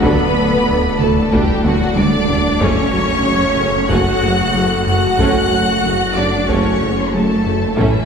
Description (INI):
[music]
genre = cinematic, hybrid orchestral and electronic film score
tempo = 93 BPM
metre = 4/4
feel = straight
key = unclear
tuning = A4 = 440 Hz
[part]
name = clear symphonic violin section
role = melody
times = 0.0-8.1 s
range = E5 to F#6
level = -23 LUFS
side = left 4 dB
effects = none
[part]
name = rich symphonic violin section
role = second line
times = 0.0-8.1 s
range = E4 to F#5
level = -21 LUFS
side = left 1 dB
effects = none
[part]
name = warm symphonic viola section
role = accompaniment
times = 0.0-8.1 s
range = C#3 to D4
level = -24 LUFS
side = right 1 dB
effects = none
[part]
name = dark French horn section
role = sustained chords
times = 0.0-8.0 s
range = C#4 to A4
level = -29 LUFS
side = left 1 dB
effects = none
[part]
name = dark analog pad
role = sustained chords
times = 0.0-8.1 s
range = D3 to D5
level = -21 LUFS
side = equal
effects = chorus
[part]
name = mellow tuba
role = bass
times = 0.0-7.9 s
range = F#1 to D2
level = -24 LUFS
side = right 2 dB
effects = none
[part]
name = phased detuned saw bass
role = bass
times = 0.0-8.1 s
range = D1 to A1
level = -26 LUFS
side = equal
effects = phaser
[part]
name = rich symphonic cello section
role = bass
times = 0.0-8.1 s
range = E3 to F#4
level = -22 LUFS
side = right 3 dB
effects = none
[part]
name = rich symphonic double bass section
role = bass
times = 0.0-7.9 s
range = F#1 to D2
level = -26 LUFS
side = right 3 dB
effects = none
[part]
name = taiko ensemble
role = drums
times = 0.0-8.1 s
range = none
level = -22 LUFS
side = equal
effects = none
[part]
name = smooth synth bass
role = riff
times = 0.1-8.0 s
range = D2 to F#3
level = -22 LUFS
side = left 2 dB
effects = none
[sound]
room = wet cathedral reverb, RT60 4.1 s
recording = recorded in a church or concert hall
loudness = -13 LUFS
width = side -6 dB against mid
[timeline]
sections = 0.0-8.1 A section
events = drum fill 1.6-2.6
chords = 0.0 D; 2.6 F#m